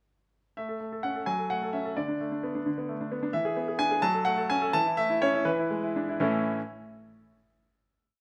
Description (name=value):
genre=classical-period piano sonatina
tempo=78-88 BPM (dotted quarters)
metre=6/8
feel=straight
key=A major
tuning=A4 = 441 Hz
part: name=bright concert grand piano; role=solo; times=0.6-6.6 s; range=A2 to A5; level=-29 LUFS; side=equal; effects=none
room=light reverb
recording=close, detailed microphones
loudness=-29 LUFS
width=mono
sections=0.6-6.2 A section; 6.2-7.7 final chord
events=slowing down 2.7-6.2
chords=0.6 A; 1.3 F#m; 2.0 Bm7/D; 3.3 E7; 4.0 F#m; 4.7 A/E; 5.5 E7; 6.2 A